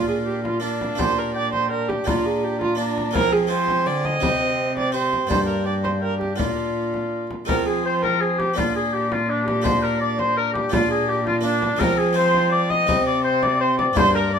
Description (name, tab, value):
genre	classical, renaissance-style consort dance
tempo	167 BPM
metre	3/4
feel	straight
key	F dorian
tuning	A4 = 437 Hz
part	warm oboe	melody	0.0-14.4 s	D4 to Bb5	-25 LUFS	left 5 dB	none
part	warm viola	second line	0.0-14.4 s	D4 to Eb5	-24 LUFS	right 4 dB	none
part	harpsichord	accompaniment	0.0-14.4 s	G2 to G4	-29 LUFS	right 3 dB	none
part	mellow bassoon	accompaniment	0.0-14.4 s	C4 to D4	-27 LUFS	left 1 dB	none
part	dark cello	bass	0.0-14.4 s	G2 to F3	-26 LUFS	equal	none
part	frame drum	percussion	0.5-14.1 s	none	-28 LUFS	left 2 dB	none
room	moderate stone room reverb, RT60 1.2 s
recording	minimal, uncompressed stereo recording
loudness	-19 LUFS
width	side -7 dB against mid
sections	0.0-7.5 A section; 7.5-14.4 A section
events	none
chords	0.0 Bb; 1.0 Gm/Bb; 2.1 Bb; 3.1 Fm; 4.2 Cm; 5.3 Gm; 6.4 Bb; 7.5 Fm; 8.6 Bb; 9.7 Gm/Bb; 10.7 Bb; 11.8 Fm; 12.9 C5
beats	0.27 0.63 | 0.99 1.35 1.71 | 2.07 2.43 2.79 | 3.15 3.51 3.87 | 4.22 4.58 4.94 | 5.30 5.66 6.03 | 6.39 6.76 7.12 | 7.49 7.85 8.21 | 8.57 8.93 9.29 | 9.65 10.01 10.37 | 10.73 11.09 11.44 | 11.80 12.16 12.52 | 12.88 13.24 13.61 | 13.97 14.33